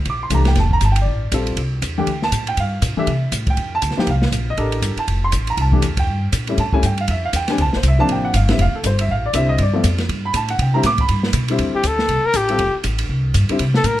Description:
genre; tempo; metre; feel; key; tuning
jazz, small-group swing and bop; 239 BPM; 4/4; swing 59% on 8ths; C mixolydian; A4 = 440 Hz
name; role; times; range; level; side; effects
upright bass; bass; 0.0-14.0 s; F1 to C3; -19 LUFS; equal; none
warm baby grand piano; accompaniment; 0.1-13.6 s; C3 to D6; -21 LUFS; equal; none
open jazz drum kit; drums; 0.1-13.9 s; hi-hat, kick drum, ride cymbal, snare drum; -23 LUFS; right 1 dB; none
mellow trumpet; melody; 11.8-14.0 s; G4 to Bb4; -18 LUFS; left 2 dB; none
room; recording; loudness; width
little or no reverb; close, detailed microphones; -16 LUFS; side -14 dB against mid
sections
0.0-11.6 A section; 11.6-14.0 A section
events
trumpet solo 11.6-14.0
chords
0.0 C13; 0.6 F69; 1.6 C69; 2.6 Gm7; 3.1 C6; 3.6 F13; 5.6 C13; 6.6 A7(no3); 7.6 Dm7; 9.6 G9; 10.6 C69; 11.1 G6; 11.6 C69; 12.6 Fadd9

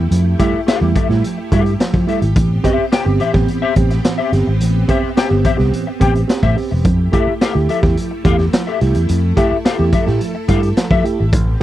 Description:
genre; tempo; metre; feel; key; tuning
funk; 107 BPM; 4/4; straight; unclear; A4 = 444 Hz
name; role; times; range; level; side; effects
string machine, violins; sustained chords; 0.0-11.6 s; A3 to A4; -25 LUFS; equal; ensemble chorus
reed electric piano; stabs; 0.0-11.6 s; A2 to G4; -20 LUFS; right 5 dB; none
fingered electric bass; bass; 0.0-11.6 s; E1 to F3; -15 LUFS; equal; none
raw garage drum kit; drums; 0.1-11.5 s; hi-hat, kick drum, snare drum; -17 LUFS; equal; vintage 12-bit sampler grit
mellow electric guitar; accompaniment; 0.4-11.2 s; G4 to G5; -20 LUFS; left 7 dB; ensemble chorus
room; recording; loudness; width
little or no reverb; dry, close 1970s-style studio recording; -13 LUFS; side -14 dB against mid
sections
0.0-11.6 A section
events
none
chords
0.0 Fmaj9; 2.4 Am7; 6.8 Fmaj9

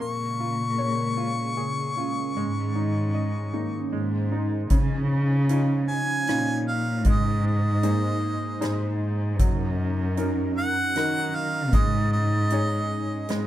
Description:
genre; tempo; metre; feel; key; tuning
acoustic folk-pop ballad; 77 BPM; 3/4; straight; Db major; A4 = 441 Hz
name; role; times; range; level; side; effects
clear harmonica; melody; 0.0-13.5 s; Eb5 to Db6; -28 LUFS; left 1 dB; none
bright upright piano; accompaniment; 0.0-13.5 s; Db3 to Eb5; -32 LUFS; left 1 dB; none
warm analog pad; sustained chords; 0.0-13.5 s; Db3 to C5; -35 LUFS; right 1 dB; chorus
felt-muted upright piano; arpeggios; 0.0-13.5 s; Bb3 to Eb4; -32 LUFS; right 6 dB; none
warm cello; bass; 0.0-13.5 s; Gb2 to Eb3; -26 LUFS; equal; none
soft-mallet drum kit; drums; 4.7-13.5 s; hi-hat, kick drum, rim click; -25 LUFS; equal; none
room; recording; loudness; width
light reverb; minimal, uncompressed stereo recording; -22 LUFS; side -13 dB against mid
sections
0.0-4.7 A section; 4.7-13.5 B section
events
none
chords
0.0 Bbm7; 2.4 Absus4; 3.9 Ab; 4.7 Dbadd9; 7.1 Ab; 9.4 Gb6; 11.7 Absus4

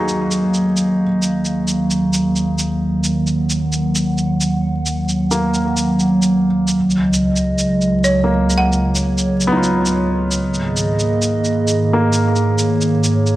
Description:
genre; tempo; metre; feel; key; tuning
future garage; 132 BPM; 4/4; swing 66% on 16ths; Eb minor; A4 = 441 Hz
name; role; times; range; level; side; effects
felt-muted upright piano; accompaniment; 0.0-13.4 s; Bb3 to Ab4; -23 LUFS; left 1 dB; analog delay
warbly tape-like pad; sustained chords; 0.0-13.4 s; Db2 to Gb5; -16 LUFS; right 1 dB; chorus, built-in reverb
shaker; drums; 0.1-13.3 s; none; -24 LUFS; right 1 dB; none
folk marimba with hard mallets; melody; 8.0-9.0 s; Db5 to Gb5; -20 LUFS; right 1 dB; vintage 12-bit sampler grit, analog delay
room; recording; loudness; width
light reverb; dry, gritty hardware recording, transformer saturation, vinyl crackle; -15 LUFS; side -16 dB against mid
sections
0.0-13.4 A section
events
none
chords
0.0 Ebmadd9; 6.8 Db7sus4; 10.4 Absus2

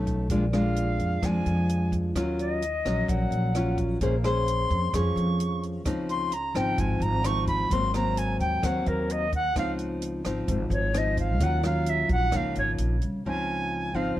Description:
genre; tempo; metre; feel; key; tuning
bossa nova; 130 BPM; 4/4; straight; Db major; A4 = 439 Hz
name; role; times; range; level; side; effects
nylon-string guitar; accompaniment; 0.0-14.2 s; Ab2 to C5; -29 LUFS; left 1 dB; none
upright bass; bass; 0.0-14.2 s; Ab1 to F2; -28 LUFS; equal; none
compact cocktail drum kit; drums; 0.1-13.1 s; hi-hat, kick drum, rim click; -33 LUFS; equal; none
bright reedy concert flute; melody; 0.5-14.2 s; Bb4 to Db6; -29 LUFS; equal; none
room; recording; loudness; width
little or no reverb; dark, warm production; -24 LUFS; side -14 dB against mid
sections
0.0-13.3 A section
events
flute solo 0.0-13.3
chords
0.3 Bb7; 2.2 Ebm9; 4.0 Bbm9; 5.9 Dbmaj9; 7.7 Ab9; 9.6 Dbmaj9; 11.4 Ebm9; 12.3 Db69; 13.3 Dbmaj9

